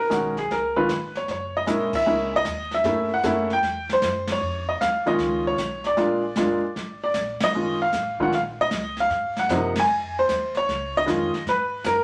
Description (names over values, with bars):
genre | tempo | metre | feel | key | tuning
jazz piano trio | 153 BPM | 4/4 | swing 67% on 8ths | Db mixolydian | A4 = 439 Hz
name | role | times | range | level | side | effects
clear upright piano | melody | 0.0-12.0 s | C3 to Ab5 | -24 LUFS | equal | none
upright bass | bass | 0.0-12.0 s | Gb1 to Ab2 | -40 LUFS | equal | none
jazz brush drum kit | drums | 0.1-12.0 s | brushed snare drum, crash cymbal, hi-hat, kick drum, ride cymbal, snare drum | -35 LUFS | equal | none
room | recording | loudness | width
wet studio reverb, RT60 0.6 s | vinyl crackle | -24 LUFS | mono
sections
0.0-12.0 A section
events
band accent 1.9, 4.2, 7.3, 9.7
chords
0.5 Db7(no3); 1.3 Gb7; 2.8 Gdim7; 4.4 Db7; 6.0 Bb7; 7.5 Ebm7; 9.1 Ab7; 10.7 Db7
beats
0.11 0.50 0.89 | 1.28 1.67 2.06 2.45 | 2.84 3.23 3.62 4.02 | 4.41 4.80 5.19 5.58 | 5.97 6.36 6.75 7.15 | 7.54 7.93 8.32 8.71 | 9.10 9.50 9.89 10.28 | 10.67 11.06 11.46 11.85